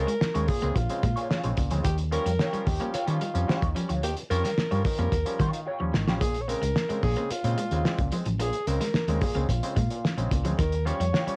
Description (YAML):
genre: funk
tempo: 110 BPM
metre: 4/4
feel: straight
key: Bb dorian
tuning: A4 = 440 Hz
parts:
  - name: clear alto saxophone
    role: melody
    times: 0.0-11.4 s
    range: F4 to Db5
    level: -34 LUFS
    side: equal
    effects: cassette tape
  - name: semi-hollow electric guitar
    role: accompaniment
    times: 0.0-6.2, 10.9-11.4 s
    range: F4 to Db5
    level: -36 LUFS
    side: equal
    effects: wah, lush chorus, cassette tape
  - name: overdriven clav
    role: stabs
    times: 0.0-11.4 s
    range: Bb2 to Db4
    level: -37 LUFS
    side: equal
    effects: cassette tape
  - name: hollow-body short-scale fingered electric bass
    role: bass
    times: 0.0-11.3 s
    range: Ab1 to Eb3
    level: -30 LUFS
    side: equal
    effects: none
  - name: clean electric guitar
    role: riff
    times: 0.1-11.4 s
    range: Eb3 to Bb3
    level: -36 LUFS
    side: equal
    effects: cassette tape
  - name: cloth-damped thuddy drum kit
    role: drums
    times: 0.1-11.4 s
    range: hi-hat, kick drum, snare drum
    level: -31 LUFS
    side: equal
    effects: cassette tape
room: little or no reverb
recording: home recording on cassette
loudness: -27 LUFS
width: mono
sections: 0.0-11.4 A section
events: drum fill 5.7-6.2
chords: 0.0 Bbm7; 1.9 Eb9; 6.2 Bbm7; 10.6 Eb9